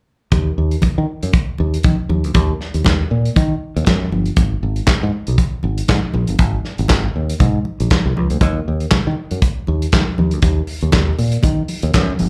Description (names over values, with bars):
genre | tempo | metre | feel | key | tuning
disco | 119 BPM | 4/4 | swing 56% on 16ths | Eb minor | A4 = 439 Hz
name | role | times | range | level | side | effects
fingered electric bass | bass | 0.3-12.3 s | G1 to Eb3 | -20 LUFS | equal | none
warm soul drum kit | drums | 0.3-12.3 s | handclaps, hi-hat, kick drum, snare drum | -19 LUFS | equal | none
congas | percussion | 0.3-12.3 s | none | -25 LUFS | equal | none
room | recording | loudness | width
light reverb | live gig heard through the venue's PA, club reverb | -17 LUFS | mono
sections
0.3-12.3 A section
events
none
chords
none